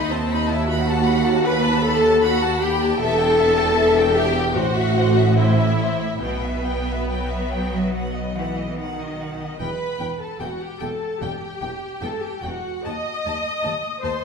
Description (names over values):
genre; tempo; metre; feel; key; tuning
classical, slow romantic movement for string orchestra; 73 BPM; 4/4; uneven beats, rubato; E minor; A4 = 440 Hz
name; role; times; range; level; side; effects
clear studio violin section; melody; 0.0-14.1 s; C5 to B5; -29 LUFS; left 3 dB; none
rich studio violin section; second line; 0.0-14.2 s; B4 to D#6; -28 LUFS; left 3 dB; none
rich studio viola section; accompaniment; 0.0-14.2 s; A3 to D#5; -22 LUFS; left 1 dB; none
bright studio cello section; bass; 0.0-14.1 s; D#2 to F#3; -26 LUFS; right 2 dB; none
clear studio double bass section; bass; 0.0-14.1 s; E1 to D#2; -26 LUFS; right 2 dB; none
room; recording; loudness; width
wet recital hall reverb, RT60 1.6 s; heard from further back in the room; -19 LUFS; side -6 dB against mid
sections
0.0-14.2 A section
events
none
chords
0.0 B7/D#; 3.0 Em; 4.6 Am; 6.2 Em/B; 7.9 B; 9.6 Em; 12.8 B(b9)/D# (rootless)